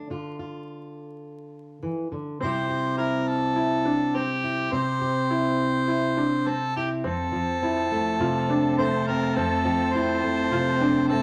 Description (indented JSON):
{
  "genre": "acoustic folk duo or small band",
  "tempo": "104 BPM",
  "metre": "4/4",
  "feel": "straight",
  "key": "F major",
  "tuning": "A4 = 440 Hz",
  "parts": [
    { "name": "fingerpicked plugged-in steel-string acoustic guitar", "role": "accompaniment", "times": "0.0-11.2 s", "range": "F2 to G4", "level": "-29 LUFS", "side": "equal", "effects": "none" },
    { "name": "warm harmonica", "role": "second line", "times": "2.4-11.2 s", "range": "G4 to C5", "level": "-29 LUFS", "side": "equal", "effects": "none" },
    { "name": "felt-muted upright piano", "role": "arpeggios", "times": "2.4-11.2 s", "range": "C4 to F4", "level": "-30 LUFS", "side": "equal", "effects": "none" },
    { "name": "muted chamber string section", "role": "sustained chords", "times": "7.1-11.2 s", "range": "F3 to A5", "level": "-34 LUFS", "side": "equal", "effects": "none" }
  ],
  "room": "wet studio reverb, RT60 0.6 s",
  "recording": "vinyl crackle",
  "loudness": "-25 LUFS",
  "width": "mono",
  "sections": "0.0-7.0 A section; 7.0-11.2 B section",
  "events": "none",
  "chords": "0.0 Dm; 2.4 C; 7.0 F",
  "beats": "| 0.10 0.68 1.25 1.83 | 2.41 2.99 3.57 4.15 | 4.73 5.31 5.89 6.47 | 7.05 7.63 8.21 8.79 | 9.37 9.95 10.53 11.10"
}